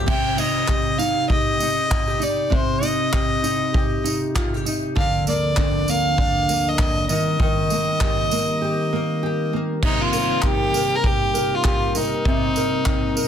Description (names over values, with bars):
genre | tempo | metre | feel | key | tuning
acoustic pop | 99 BPM | 4/4 | swing 60% on 16ths | C minor | A4 = 442 Hz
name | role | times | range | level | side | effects
nylon-string guitar | accompaniment | 0.0-13.3 s | C3 to C5 | -23 LUFS | equal | double-tracked left and right
warm violin | melody | 0.1-13.3 s | Eb4 to G5 | -23 LUFS | equal | none
loose indie drum kit | drums | 0.1-13.3 s | crash cymbal, handclaps, kick drum, tambourine | -22 LUFS | equal | none
mellow tonewheel organ | sustained chords | 4.9-13.3 s | D2 to Bb4 | -30 LUFS | left 1 dB | slow rotary speaker
room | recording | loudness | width
light reverb | dense, heavily limited modern master | -18 LUFS | side -9 dB against mid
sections
0.1-9.8 A section; 9.8-13.3 B section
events
break 8.6-9.8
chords
0.1 Cm; 5.0 Bbadd9/D; 7.1 Eb6; 9.8 Cm7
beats
| 0.09 0.70 1.31 1.92 | 2.53 3.14 3.75 4.36 | 4.96 5.57 6.18 6.79 | 7.40 8.01 8.61 9.22 | 9.83 10.44 11.04 11.65 | 12.26 12.86